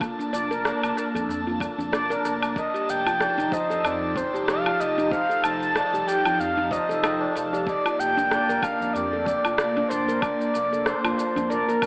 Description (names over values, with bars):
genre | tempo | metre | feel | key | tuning
organic downtempo | 94 BPM | 4/4 | swing 56% on 16ths | unclear | A4 = 440 Hz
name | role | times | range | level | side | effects
airy breathy pad | sustained chords | 0.0-11.9 s | F3 to A5 | -29 LUFS | equal | chorus, phaser, sidechain pumping
handpan | arpeggios | 0.0-11.8 s | D4 to D5 | -28 LUFS | equal | vintage 12-bit sampler grit, tape echo
warm sub bass | bass | 0.0-11.6 s | F1 to F2 | -40 LUFS | equal | sidechain pumping
electronic kick drum | drums | 0.0-11.9 s | none | -34 LUFS | equal | none
electronic woodblock, shaker and rim click | drums | 0.0-11.9 s | none | -29 LUFS | equal | tape echo
tabla | percussion | 0.7-11.9 s | none | -34 LUFS | equal | tape echo
breathy flute-like synth lead | melody | 2.6-11.9 s | Bb4 to A5 | -24 LUFS | equal | chorus, dub echo
room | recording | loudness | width
wet echo chamber reverb, RT60 2.1 s | echo-heavy mix, AM radio sound | -21 LUFS | side -36 dB against mid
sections
0.0-11.9 A section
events
none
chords
0.0 Bbmaj7/F; 2.6 F9; 7.7 Bbmaj7/F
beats
| 0.01 0.65 1.29 1.93 | 2.57 3.21 3.84 4.48 | 5.12 5.76 6.40 7.04 | 7.67 8.31 8.95 9.59 | 10.23 10.86 11.50